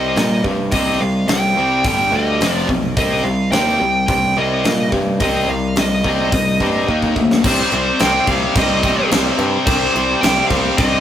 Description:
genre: hard rock.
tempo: 107 BPM.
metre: 4/4.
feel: straight.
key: C minor.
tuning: A4 = 438 Hz.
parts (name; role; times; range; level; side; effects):
smooth overdriven lead guitar; melody; 0.0-11.0 s; C5 to G5; -19 LUFS; right 1 dB; analog delay.
cranked stack guitar; riff; 0.0-11.0 s; F2 to Eb4; -23 LUFS; right 2 dB; overdrive.
tight distorted guitar; riff; 0.0-11.0 s; F2 to Eb4; -20 LUFS; left 4 dB; distortion.
picked electric bass; bass; 0.0-11.0 s; F1 to Bb2; -21 LUFS; equal; none.
gated 80s drum kit; drums; 0.2-10.9 s; crash cymbal, hi-hat, kick drum, snare drum; -20 LUFS; equal; none.
room: moderate small room ambience, RT60 0.5 s.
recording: rough rehearsal-room recording, warm saturation.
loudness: -14 LUFS.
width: side -10 dB against mid.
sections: 0.0-7.4 A section; 7.4-11.0 B section.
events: drum fill 6.9-7.4.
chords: 0.0 Cm; 1.8 G5; 2.4 F5; 3.0 Cm; 6.9 Eb5; 7.4 Cm.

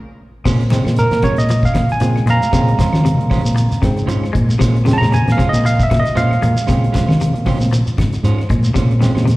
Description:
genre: afrobeat.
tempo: 116 BPM.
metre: 4/4.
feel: swing 55% on 16ths.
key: Bb minor.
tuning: A4 = 440 Hz.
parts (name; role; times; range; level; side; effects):
clean electric guitar; arpeggios; 0.5-9.4 s; C3 to Ab3; -23 LUFS; left 3 dB; tremolo.
semi-hollow electric guitar; stabs; 0.5-9.3 s; Ab3 to C5; -25 LUFS; right 5 dB; slapback echo.
fingered electric bass; bass; 0.5-9.4 s; Ab2 to Eb3; -15 LUFS; equal; none.
damped 70s drum kit; drums; 0.5-9.4 s; crash cymbal, hi-hat, kick drum, snare drum; -21 LUFS; equal; none.
claves; percussion; 0.5-9.3 s; none; -40 LUFS; left 3 dB; none.
shekere; percussion; 0.5-9.4 s; none; -24 LUFS; equal; none.
barky tine electric piano; accompaniment; 0.7-9.4 s; Db3 to Bb5; -18 LUFS; right 1 dB; overdrive, slapback echo.
congas; percussion; 0.7-9.4 s; none; -26 LUFS; equal; none.
room: little or no reverb.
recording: live gig heard through the venue's PA, recital hall reverb.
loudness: -12 LUFS.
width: side -18 dB against mid.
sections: 0.5-9.4 A section.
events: drum fill 0.0-0.5; band accent 0.0-0.5; tine electric piano solo 0.5-9.4.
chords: 0.5 Bbm9.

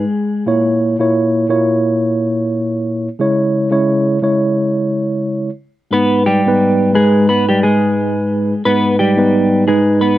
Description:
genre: hip hop.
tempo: 88 BPM.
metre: 4/4.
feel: swing 55% on 16ths.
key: G# harmonic minor.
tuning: A4 = 440 Hz.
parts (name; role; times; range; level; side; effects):
semi-hollow electric guitar; melody; 0.0-0.4, 5.9-10.2 s; G3 to B4; -15 LUFS; left 1 dB; high-pass filter, low-pass filter, ping-pong delay.
mellow tine electric piano; accompaniment; 0.0-10.2 s; G#2 to C#5; -14 LUFS; right 1 dB; medium stereo tremolo, cassette tape, high-pass filter, low-pass filter.
room: light reverb.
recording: dark, warm production.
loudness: -12 LUFS.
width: side -14 dB against mid.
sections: 0.0-5.9 A section; 5.9-10.2 B section.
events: none.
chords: 0.5 A#dim; 3.2 C#m; 5.9 G#m.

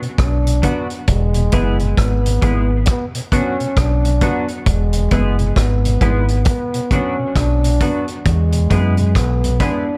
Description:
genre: roots reggae.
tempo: 67 BPM.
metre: 4/4.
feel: swing 61% on 16ths.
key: E mixolydian.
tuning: A4 = 436 Hz.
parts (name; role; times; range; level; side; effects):
mellow tonewheel organ; accompaniment; 0.0-9.7 s; E2 to B3; -30 LUFS; equal; none.
dark grand piano; stabs; 0.0-9.8 s; B3 to B4; -30 LUFS; equal; none.
vintage drum kit; drums; 0.0-9.9 s; hi-hat, kick drum, rim click; -22 LUFS; equal; none.
breathy trombone; melody; 0.2-10.0 s; G#3 to D4; -25 LUFS; equal; tape echo.
deep dub fingered electric bass; bass; 0.2-9.6 s; E1 to F#2; -18 LUFS; equal; none.
semi-hollow electric guitar; accompaniment; 0.6-9.9 s; F#3 to G#4; -30 LUFS; equal; analog chorus, tape echo.
room: little or no reverb.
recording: none.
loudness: -17 LUFS.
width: mono.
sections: 0.0-10.0 A section.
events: none.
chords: 0.0 Bm; 1.1 E; 2.9 Bm; 4.7 E; 6.5 Bm; 8.3 E.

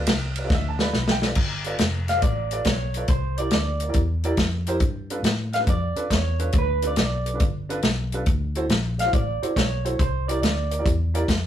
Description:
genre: electric blues shuffle.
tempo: 139 BPM.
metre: 4/4.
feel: swing 68% on 8ths.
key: G mixolydian.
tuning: A4 = 440 Hz.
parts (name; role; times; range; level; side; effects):
vintage muted fingered electric bass; bass; 0.0-11.5 s; F1 to A2; -26 LUFS; equal; none.
warm soul drum kit; drums; 0.1-11.4 s; crash cymbal, hi-hat, kick drum, ride cymbal, snare drum; -23 LUFS; equal; none.
warm upright piano; accompaniment; 0.4-11.2 s; D4 to B5; -30 LUFS; right 2 dB; none.
electric guitar through a small old amp; melody; 2.1-10.8 s; B4 to F5; -27 LUFS; right 2 dB; none.
room: moderate studio reverb, RT60 0.5 s.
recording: rough rehearsal-room recording, tube saturation.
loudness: -21 LUFS.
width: side -10 dB against mid.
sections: 0.0-1.4 A section; 1.4-11.5 B section.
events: drum fill 0.5-1.4.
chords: 0.0 G9; 3.1 C9; 4.8 G9; 8.3 D9; 10.0 C9.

